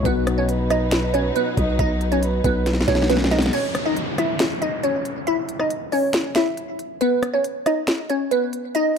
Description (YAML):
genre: hip hop, trap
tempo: 138 BPM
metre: 4/4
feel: half-time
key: C# minor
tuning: A4 = 440 Hz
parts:
  - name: breathy flute-like synth lead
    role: second line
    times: 0.0-2.6 s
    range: B4 to D#5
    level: -30 LUFS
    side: right 6 dB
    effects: chorus, digital delay
  - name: dark baby grand piano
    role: accompaniment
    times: 0.0-3.6 s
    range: B2 to F#4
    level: -30 LUFS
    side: left 6 dB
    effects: none
  - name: growling 808-style bass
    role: bass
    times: 0.0-3.5 s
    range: B1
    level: -23 LUFS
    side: equal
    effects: none
  - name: glassy wavetable pluck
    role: melody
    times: 0.1-9.0 s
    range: B3 to E5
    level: -22 LUFS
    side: right 1 dB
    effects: chorus, digital delay
  - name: warm symphonic string section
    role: sustained chords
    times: 0.1-3.5 s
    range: F#3 to D#4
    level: -31 LUFS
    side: left 3 dB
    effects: none
  - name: trap drum kit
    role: drums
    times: 0.1-8.8 s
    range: crash cymbal, finger snaps, hi-hat, kick drum, rim click, snare drum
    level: -23 LUFS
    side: equal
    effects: none
  - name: downlifter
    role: sound effects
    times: 3.5-7.0 s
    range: none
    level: -29 LUFS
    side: left 1 dB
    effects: none
room: light reverb, digital ambience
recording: none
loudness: -19 LUFS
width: side -6 dB against mid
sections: 0.0-3.5 A section; 3.5-9.0 B section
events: drum fill 2.7-3.5; break 3.5-9.0; kick muted 8.7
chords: 0.1 B; 3.5 C#m; 7.0 B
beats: | 0.05 0.49 0.92 1.36 | 1.79 2.23 2.66 3.10 | 3.53 3.96 4.40 4.83 | 5.27 5.70 6.14 6.57 | 7.01 7.44 7.88 8.31 | 8.75